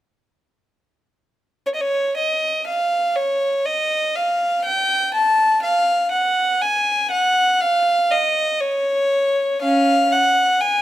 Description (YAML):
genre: classical, baroque-style suite movement for unaccompanied violin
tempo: 60 BPM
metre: 4/4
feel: rubato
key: unclear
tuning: A4 = 439 Hz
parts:
  - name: warm violin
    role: solo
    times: 1.7-10.8 s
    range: Db4 to A5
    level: -16 LUFS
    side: equal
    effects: none
room: light reverb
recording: close, detailed microphones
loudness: -16 LUFS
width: side -13 dB against mid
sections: 1.7-10.8 A section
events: none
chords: none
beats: | 1.67 2.67 3.66 4.65 | 5.64 6.62 7.62 8.62 | 9.62 10.61